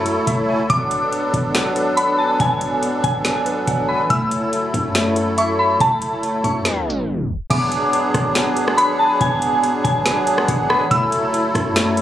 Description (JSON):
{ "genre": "hip hop, atmospheric cloud-rap", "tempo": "141 BPM", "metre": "4/4", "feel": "half-time", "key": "unclear", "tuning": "A4 = 445 Hz", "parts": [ { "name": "soft synth bell", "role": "melody", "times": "0.0-12.0 s", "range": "G#5 to E6", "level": "-20 LUFS", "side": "equal", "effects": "chorus, phaser, low-pass filter, digital delay" }, { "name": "musette accordion", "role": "sustained chords", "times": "0.0-12.0 s", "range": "F#3 to A4", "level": "-21 LUFS", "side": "equal", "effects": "sidechain pumping" }, { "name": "glassy digital keys", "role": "arpeggios", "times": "0.0-12.0 s", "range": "A3 to A5", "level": "-26 LUFS", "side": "left 1 dB", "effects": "chorus, low-pass filter, digital delay" }, { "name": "warm 808-style bass", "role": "bass", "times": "0.0-12.0 s", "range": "E1 to F#2", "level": "-27 LUFS", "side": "equal", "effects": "none" }, { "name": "smooth R&B drum kit", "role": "drums", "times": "0.1-12.0 s", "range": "crash cymbal, hi-hat, kick drum, rim click, snare drum", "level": "-22 LUFS", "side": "equal", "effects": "none" } ], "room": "light reverb", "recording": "recorded on a phone in the room, club reverb, compression, tape stop", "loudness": "-16 LUFS", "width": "side -12 dB against mid", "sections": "0.0-7.5 A section; 7.5-12.0 B section", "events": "break 6.7-7.5; tape stop 6.7-7.5", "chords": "0.0 F#m9; 0.7 G#m7b5; 4.1 F#m7; 7.5 G#m7b5; 10.9 F#m7" }